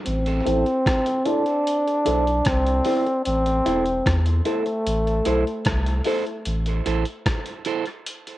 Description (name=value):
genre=dub reggae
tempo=75 BPM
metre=4/4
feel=straight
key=A minor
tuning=A4 = 440 Hz
part: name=warm trombone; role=melody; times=0.1-6.0 s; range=A3 to D4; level=-23 LUFS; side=equal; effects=low-pass filter, cassette tape, dub echo
part: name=warm sub bass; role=bass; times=0.1-7.0 s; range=E1 to E2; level=-23 LUFS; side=equal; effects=none
part: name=dusty soul sampler-style drum kit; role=drums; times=0.1-8.4 s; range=hi-hat, kick drum, rim click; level=-27 LUFS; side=equal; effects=cassette tape
part: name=electric guitar at the edge of break-up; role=accompaniment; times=0.5-7.8 s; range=E4 to C5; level=-29 LUFS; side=right 8 dB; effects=low-pass filter, cassette tape, dub echo
part: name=dark upright piano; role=stabs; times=0.5-6.3 s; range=E4 to C5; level=-30 LUFS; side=left 8 dB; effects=low-pass filter, cassette tape, dub echo
room=light reverb, digital ambience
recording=home recording on cassette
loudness=-20 LUFS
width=side -15 dB against mid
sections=0.1-8.4 A section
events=filter sweep 0.1-8.4; break 6.5-8.4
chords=0.1 Am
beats=| 0.06 0.85 1.66 2.46 | 3.26 4.06 4.86 5.66 | 6.46 7.26 8.06